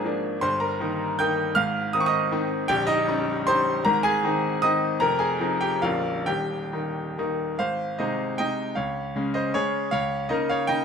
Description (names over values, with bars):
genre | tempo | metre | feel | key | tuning
classical, romantic triple-time dance for piano with dotted rhythms | 128-168 BPM | 3/4 | rubato | Ab major | A4 = 440 Hz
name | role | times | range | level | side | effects
bright grand piano | solo | 0.0-10.8 s | Bb0 to G6 | -22 LUFS | equal | none
room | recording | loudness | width
moderate recital hall reverb, RT60 1.6 s | close, detailed microphones | -22 LUFS | side -6 dB against mid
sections
0.0-7.6 A section; 7.6-10.8 B section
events
none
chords
0.4 Eb/G; 1.6 Ab; 2.7 Eb7/Bb; 3.9 Ab; 5.0 Fm7; 5.8 Bbm; 6.3 Eb; 7.6 Ab; 8.8 Db; 9.9 Eb7/Db